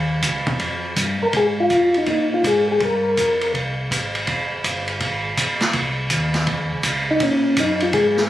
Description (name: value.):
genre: soul jazz organ trio.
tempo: 163 BPM.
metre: 4/4.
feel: swing 65% on 8ths.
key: F minor.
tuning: A4 = 440 Hz.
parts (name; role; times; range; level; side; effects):
mellow tonewheel organ; bass; 0.0-8.3 s; F1 to Bb2; -26 LUFS; equal; chorus vibrato, slow rotary speaker.
vintage drum kit; drums; 0.2-8.2 s; hi-hat, kick drum, ride cymbal, snare drum; -22 LUFS; right 1 dB; none.
percussive tonewheel organ; melody; 1.2-3.5, 7.1-8.2 s; Db4 to Bb4; -17 LUFS; left 1 dB; slow rotary speaker, chorus vibrato.
room: moderate large studio reverb, RT60 0.8 s.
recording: recorded on a phone in the room, club reverb.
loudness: -18 LUFS.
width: side -13 dB against mid.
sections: 0.0-7.2 A section; 7.2-8.3 B section.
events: none.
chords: 0.0 Eb9; 1.3 Absus2; 2.8 Fsus24; 3.5 Ab; 4.3 Fm; 5.7 Cm; 6.5 Dbadd9; 7.2 Bbm7.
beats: 0.23 0.60 0.97 | 1.34 1.70 2.07 2.44 | 2.81 3.17 3.54 3.91 | 4.28 4.64 5.01 5.38 | 5.74 6.11 6.48 6.84 | 7.21 7.58 7.94.